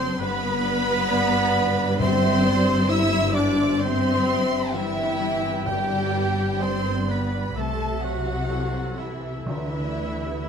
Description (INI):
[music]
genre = classical, slow romantic movement for symphony orchestra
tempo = 57-67 BPM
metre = 4/4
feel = rubato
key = G major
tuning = A4 = 436 Hz
[part]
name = rich studio violin section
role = melody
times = 0.0-10.5 s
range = E5 to E6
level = -29 LUFS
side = equal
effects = none
[part]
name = rich studio violin section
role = second line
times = 0.0-10.5 s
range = E4 to E5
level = -32 LUFS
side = right 1 dB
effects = none
[part]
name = warm cor anglais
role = second line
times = 0.0-10.5 s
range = E4 to E5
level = -33 LUFS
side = right 3 dB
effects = none
[part]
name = warm studio viola section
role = accompaniment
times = 0.0-10.5 s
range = E3 to E4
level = -30 LUFS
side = right 2 dB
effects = none
[part]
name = dark French horn section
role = sustained chords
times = 0.0-10.5 s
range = E3 to E4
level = -28 LUFS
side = left 4 dB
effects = none
[part]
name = concert harp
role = arpeggios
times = 0.0-10.5 s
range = F#2 to E6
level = -34 LUFS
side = left 10 dB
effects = none
[part]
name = dark studio cello section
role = bass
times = 0.0-10.4 s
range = F#2 to D3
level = -28 LUFS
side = equal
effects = none
[part]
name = dark studio double bass section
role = bass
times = 0.0-10.5 s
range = F#1 to D2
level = -30 LUFS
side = right 3 dB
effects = none
[part]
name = flute section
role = second line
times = 0.2-10.5 s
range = A4 to G5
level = -33 LUFS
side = right 2 dB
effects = none
[part]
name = timpani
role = percussion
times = 2.0-10.5 s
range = G2 to D3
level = -32 LUFS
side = left 1 dB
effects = none
[sound]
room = moderate recital hall reverb, RT60 1.9 s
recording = none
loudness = -20 LUFS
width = side -7 dB against mid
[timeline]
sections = 0.0-10.5 A section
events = none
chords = 0.2 G; 2.0 C/G; 5.7 G; 7.6 Am/C; 9.5 G/D